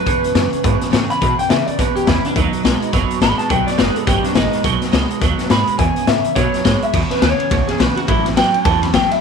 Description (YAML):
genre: rockabilly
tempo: 210 BPM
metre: 4/4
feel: swing 60% on 8ths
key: E major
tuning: A4 = 440 Hz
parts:
  - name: electric guitar through a small old amp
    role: melody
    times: 0.0-9.2 s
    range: D4 to B5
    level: -19 LUFS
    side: left 1 dB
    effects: wide subtle chorus, tape echo
  - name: picked steel-string acoustic guitar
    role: accompaniment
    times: 0.0-9.2 s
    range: A2 to G#4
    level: -26 LUFS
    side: left 12 dB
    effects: none
  - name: electric guitar at the edge of break-up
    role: riff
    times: 0.0-9.2 s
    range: E2 to G#3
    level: -21 LUFS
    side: right 17 dB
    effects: ensemble chorus
  - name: upright bass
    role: bass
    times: 0.1-9.1 s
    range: F#1 to C#3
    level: -21 LUFS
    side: right 2 dB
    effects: none
  - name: raw garage drum kit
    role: drums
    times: 0.1-9.2 s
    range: crash cymbal, hi-hat, kick drum, ride cymbal, snare drum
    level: -18 LUFS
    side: left 4 dB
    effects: none
room: small room ambience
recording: 1960s-style stereo with parts hard left and right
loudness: -14 LUFS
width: side -6 dB against mid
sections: 0.0-6.9 A section; 6.9-9.2 B section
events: clean electric guitar solo 6.9-9.2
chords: 0.1 E6; 2.4 B6; 5.8 E6; 6.4 B6; 6.9 E6; 8.1 A6